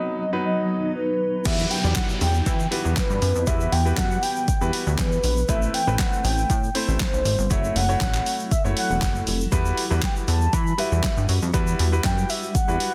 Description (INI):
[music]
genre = dance-pop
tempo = 119 BPM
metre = 4/4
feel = straight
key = E minor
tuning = A4 = 441 Hz
[part]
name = mellow horn-like synth lead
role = melody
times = 0.0-12.9 s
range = B4 to B5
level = -29 LUFS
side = equal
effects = chorus, digital delay
[part]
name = clear baby grand piano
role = accompaniment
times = 0.0-12.9 s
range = F#3 to D5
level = -32 LUFS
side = equal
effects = sidechain pumping
[part]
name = granular cloud pad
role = sustained chords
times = 0.0-12.9 s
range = E3 to A4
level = -35 LUFS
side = equal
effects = built-in reverb, sidechain pumping
[part]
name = chorused synth bass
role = bass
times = 1.5-12.8 s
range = E1 to E3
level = -25 LUFS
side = equal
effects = sidechain pumping
[part]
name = deep house drum kit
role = drums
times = 1.5-12.9 s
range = crash cymbal, handclaps, hi-hat, kick drum, snare drum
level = -27 LUFS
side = equal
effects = overdrive
[part]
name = egg shaker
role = percussion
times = 1.5-12.8 s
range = none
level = -41 LUFS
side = equal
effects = none
[part]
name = downlifter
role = sound effects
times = 1.5-5.5 s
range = none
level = -36 LUFS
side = equal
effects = none
[sound]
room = light reverb, digital ambience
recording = dense, heavily limited modern master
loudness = -22 LUFS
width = mono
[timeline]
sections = 0.0-1.5 A section; 1.5-12.9 B section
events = break 0.0-1.5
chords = 0.0 B; 1.5 Emadd9; 5.5 Amadd9; 7.5 F#m7; 9.5 Emadd9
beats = 0.45 0.95 | 1.46 1.96 2.46 2.97 | 3.47 3.98 4.48 4.99 | 5.49 5.99 6.50 7.00 | 7.51 8.01 8.52 9.02 | 9.52 10.03 10.53 11.04 | 11.54 12.04 12.55